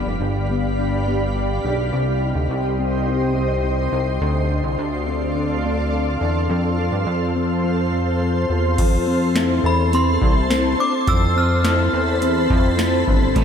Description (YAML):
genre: dream pop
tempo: 105 BPM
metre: 4/4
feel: straight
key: F lydian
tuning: A4 = 440 Hz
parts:
  - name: shimmering ambient pad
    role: sustained chords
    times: 0.0-13.4 s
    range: G4 to C6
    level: -24 LUFS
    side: equal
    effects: chorus, built-in reverb
  - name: mellow electric guitar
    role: arpeggios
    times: 0.0-13.4 s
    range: G2 to A4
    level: -23 LUFS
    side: left 2 dB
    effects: analog chorus, diffuse ambient delay
  - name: chorused synth bass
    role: bass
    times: 0.0-13.4 s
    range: F1 to G2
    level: -22 LUFS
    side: equal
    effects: none
  - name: booming analog drum machine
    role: drums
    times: 8.8-13.4 s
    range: crash cymbal, hi-hat, kick drum, snare drum, tambourine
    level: -21 LUFS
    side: equal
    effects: none
  - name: synth chime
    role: melody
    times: 9.7-12.5 s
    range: B5 to F6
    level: -23 LUFS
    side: equal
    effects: ensemble chorus, tremolo, diffuse ambient delay
  - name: overdriven electric guitar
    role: accompaniment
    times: 13.4 s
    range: A2 to A4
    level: -34 LUFS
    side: right 5 dB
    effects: tremolo, lush chorus
room: moderate lush hall reverb, RT60 2.9 s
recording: dreamy mix soaked in reverb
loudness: -17 LUFS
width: side -7 dB against mid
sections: 0.0-8.8 A section; 8.8-13.4 B section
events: none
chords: 0.0 G7; 1.9 Cm; 4.2 Dm7; 6.5 F; 8.8 Fmaj7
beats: 0.21 0.79 1.36 | 1.93 2.50 3.07 3.64 | 4.21 4.79 5.36 5.93 | 6.50 7.07 7.64 8.21 | 8.79 9.36 9.93 10.50 | 11.07 11.64 12.21 12.79 | 13.36